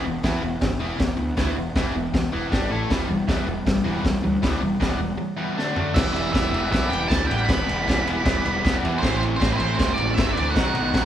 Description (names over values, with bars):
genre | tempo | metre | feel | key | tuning
garage rock duo or trio | 157 BPM | 4/4 | straight | E minor | A4 = 441 Hz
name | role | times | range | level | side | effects
crunchy overdriven guitar | riff | 0.0-11.1 s | A2 to A4 | -24 LUFS | left 1 dB | spring reverb
fuzz picked electric bass | bass | 0.1-11.1 s | E1 to E2 | -27 LUFS | equal | overdrive
crunchy breakbeat drum kit | drums | 0.2-11.0 s | crash cymbal, hi-hat, kick drum, ride cymbal, snare drum, toms | -24 LUFS | equal | none
octave-fuzz lead guitar | melody | 5.9-11.1 s | B4 to B5 | -26 LUFS | right 3 dB | distortion
room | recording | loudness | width
light reverb | band playing live in one room | -20 LUFS | side -10 dB against mid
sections
0.0-6.0 A section; 6.0-11.1 B section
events
break 5.2-6.0; drum fill 5.6-6.0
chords
0.0 E5; 2.5 G5; 2.7 A5; 2.9 Em; 5.6 D5; 6.0 Em; 9.0 Am; 10.5 B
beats
0.24 0.62 1.00 | 1.38 1.76 2.14 2.52 | 2.90 3.28 3.66 4.04 | 4.43 4.81 5.19 5.57 | 5.96 6.34 6.72 7.10 | 7.49 7.87 8.25 8.63 | 9.02 9.40 9.78 10.16 | 10.54 10.93